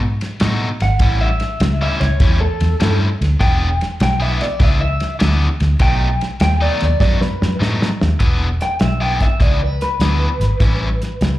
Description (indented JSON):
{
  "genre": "electric blues shuffle",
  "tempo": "100 BPM",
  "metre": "4/4",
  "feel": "swing 67% on 8ths",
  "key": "unclear",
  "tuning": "A4 = 438 Hz",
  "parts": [
    { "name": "cranked stack guitar", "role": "riff", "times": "0.0-10.9 s", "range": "A2 to G#4", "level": "-23 LUFS", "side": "left 2 dB", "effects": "overdrive, slapback echo" },
    { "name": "vintage muted fingered electric bass", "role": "bass", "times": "0.0-11.4 s", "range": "E1 to A2", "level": "-17 LUFS", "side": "equal", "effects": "none" },
    { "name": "warm soul drum kit", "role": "drums", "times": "0.2-11.4 s", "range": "hi-hat, kick drum, ride cymbal, snare drum", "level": "-19 LUFS", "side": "equal", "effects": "none" },
    { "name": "electric guitar through a small old amp", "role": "melody", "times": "0.8-11.4 s", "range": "A4 to G5", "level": "-22 LUFS", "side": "equal", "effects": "slapback echo" }
  ],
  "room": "little or no reverb",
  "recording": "live gig heard through the venue's PA, club reverb",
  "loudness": "-14 LUFS",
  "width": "side -15 dB against mid",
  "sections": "0.0-8.2 A section; 8.2-11.4 B section",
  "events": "clean electric guitar solo 0.0-8.2; drum fill 7.0-8.2",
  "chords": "0.0 B7; 1.0 A7; 3.4 E7; 5.8 B7; 8.2 E7; 10.6 A7",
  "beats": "0.41 | 1.01 1.61 2.21 2.81 | 3.41 4.01 4.61 5.21 | 5.81 6.41 7.01 7.61 | 8.21 8.81 9.41 10.01 | 10.61 11.21"
}